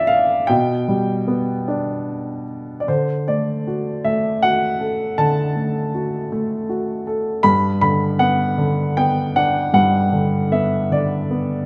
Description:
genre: classical, lyrical solo piano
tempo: 52 BPM (dotted quarters)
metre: 6/8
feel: rubato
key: G major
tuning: A4 = 440 Hz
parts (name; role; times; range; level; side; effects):
- warm upright piano; solo; 0.0-11.7 s; G2 to B5; -19 LUFS; equal; none
room: light reverb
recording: close, detailed microphones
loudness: -19 LUFS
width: mono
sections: 0.0-2.9 A section; 2.9-11.7 B section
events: none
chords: 0.5 G/B; 2.9 D; 7.4 Gmaj7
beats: | 0.49 1.68 | 2.88 4.04 | 5.18 6.31 | 7.44 8.59 | 9.74 10.92

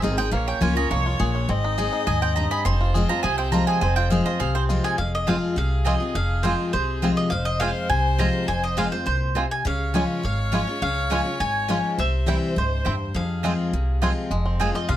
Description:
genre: bluegrass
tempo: 206 BPM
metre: 4/4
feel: straight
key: F minor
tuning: A4 = 440 Hz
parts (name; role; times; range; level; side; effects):
- rich fiddle; second line; 0.0-14.2 s; Ab4 to Eb5; -32 LUFS; left 2 dB; none
- picked steel-string acoustic guitar; accompaniment; 0.0-15.0 s; F2 to Ab4; -26 LUFS; left 2 dB; none
- bluegrass banjo; arpeggios; 0.0-15.0 s; Ab3 to Ab4; -29 LUFS; right 2 dB; none
- mandolin; stabs; 0.0-14.7 s; C4 to Db6; -28 LUFS; right 7 dB; none
- upright bass; bass; 0.0-15.0 s; F1 to F2; -25 LUFS; equal; none
- mandolin; melody; 4.8-15.0 s; C5 to Bb5; -27 LUFS; equal; none
room: little or no reverb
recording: close, detailed microphones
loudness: -20 LUFS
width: side -12 dB against mid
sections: 0.0-5.0 A section; 5.0-14.3 B section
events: mandolin solo 0.0-5.0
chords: 0.3 Bbm; 1.5 Ab; 2.7 Fm; 9.7 Db; 12.0 C; 13.1 Fm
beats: 0.04 | 0.33 0.62 0.91 1.20 | 1.49 1.78 2.07 2.37 | 2.66 2.95 3.24 3.53 | 3.82 4.11 4.40 4.69 | 4.99 5.28 5.57 5.86 | 6.15 6.44 6.73 7.03 | 7.32 7.61 7.90 8.19 | 8.48 8.78 9.07 9.36 | 9.65 9.94 10.23 10.53 | 10.82 11.11 11.40 11.69 | 11.98 12.27 12.56 12.86 | 13.15 13.44 13.73 14.02 | 14.31 14.60 14.89

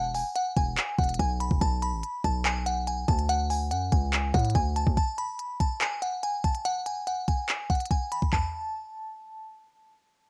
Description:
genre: hip hop, trap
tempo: 143 BPM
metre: 4/4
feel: half-time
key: unclear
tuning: A4 = 437 Hz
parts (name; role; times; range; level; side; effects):
- glassy synth bell; melody; 0.0-9.5 s; F#5 to B5; -32 LUFS; equal; chorus
- hard-hitting 808-style bass; bass; 0.0-5.0 s; E1 to A2; -31 LUFS; equal; none
- trap drum kit; drums; 0.1-8.4 s; handclaps, hi-hat, kick drum, toms; -30 LUFS; equal; cassette tape
room: little or no reverb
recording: home recording on cassette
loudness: -28 LUFS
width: mono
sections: 0.0-5.0 A section; 5.0-8.3 B section; 8.3-10.3 C section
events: none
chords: 0.0 E; 1.6 Bm7; 3.3 D; 5.0 N.C.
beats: 0.36 0.78 1.20 | 1.61 2.03 2.45 2.87 | 3.29 3.71 4.13 4.55 | 4.97 5.39 5.81 6.23 | 6.65 7.07 7.49 7.91 | 8.33 8.75 9.17

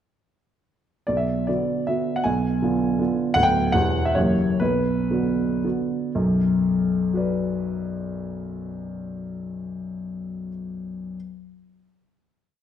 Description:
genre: classical, romantic triple-time dance for piano with dotted rhythms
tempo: 112-169 BPM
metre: 3/4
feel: rubato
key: B minor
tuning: A4 = 440 Hz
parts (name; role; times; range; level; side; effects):
- warm grand piano; solo; 1.1-11.2 s; D1 to G#5; -22 LUFS; equal; none
room: wet recital hall reverb, RT60 1.6 s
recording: minimal, uncompressed stereo recording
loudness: -21 LUFS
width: side -9 dB against mid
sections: 1.1-6.1 A section; 6.1-9.0 final chord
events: slowing down 2.8-6.1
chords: 1.1 Bm; 2.2 Bdim7; 3.4 Bm/D; 3.7 Em; 4.2 F#7b9; 4.6 Bm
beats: | 1.08 1.48 1.88 | 2.25 2.62 2.99 | 3.35 3.74 4.15 | 4.60 5.10 5.64 | 6.15 6.63 7.13 | 7.58 8.06 8.55

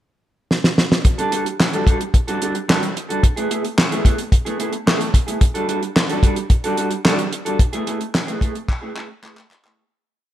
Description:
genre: early-eighties boogie funk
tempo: 110 BPM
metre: 4/4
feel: straight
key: unclear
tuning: A4 = 440 Hz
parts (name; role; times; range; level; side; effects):
- damped 70s drum kit; drums; 0.5-9.8 s; handclaps, hi-hat, kick drum, snare drum; -16 LUFS; equal; gated reverb
- mellow electric guitar; riff; 1.0-9.8 s; G3 to A4; -23 LUFS; right 1 dB; lush chorus
room: light reverb, small room ambience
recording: none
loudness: -16 LUFS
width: side -12 dB against mid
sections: 0.0-1.0 pickup bar; 1.0-9.8 breakdown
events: drum fill 0.5-1.0, 8.7-9.8; fade-out 7.6-9.8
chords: 0.0 N.C.; 1.0 Dadd11/G; 3.2 Eadd11/A; 5.4 Dadd11/G; 7.6 Eadd11/A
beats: 0.50 | 1.05 1.59 2.14 2.69 | 3.23 3.78 4.32 4.87 | 5.41 5.96 6.50 7.05 | 7.59 8.14 8.69 9.23

